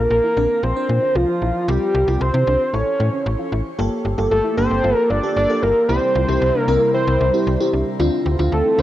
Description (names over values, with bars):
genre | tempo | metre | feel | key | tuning
pop | 114 BPM | 4/4 | straight | unclear | A4 = 440 Hz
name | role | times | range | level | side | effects
fat analog lead | melody | 0.0-8.8 s | F4 to D5 | -19 LUFS | equal | cassette tape, shimmer reverb, analog delay
FM electric piano with soft pad layer | accompaniment | 0.0-8.8 s | Bb3 to C5 | -24 LUFS | equal | chorus, phaser, cassette tape, shimmer reverb
soft round pluck | arpeggios | 0.0-8.8 s | C4 to G4 | -30 LUFS | left 1 dB | chorus, cassette tape, shimmer reverb, analog delay
slap-like FM bass | bass | 0.0-8.8 s | G1 to C3 | -20 LUFS | equal | none
phased analog pad | sustained chords | 4.0-8.8 s | C3 to A4 | -25 LUFS | equal | phaser, chorus, cassette tape, shimmer reverb
room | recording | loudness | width
wet studio reverb, RT60 0.6 s | home recording on cassette | -16 LUFS | side -13 dB against mid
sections
0.0-3.8 A section; 3.8-8.8 B section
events
none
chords
0.0 Bbadd9; 1.7 Csus4; 2.7 A; 3.8 Gmadd9; 5.9 C; 8.0 Dm7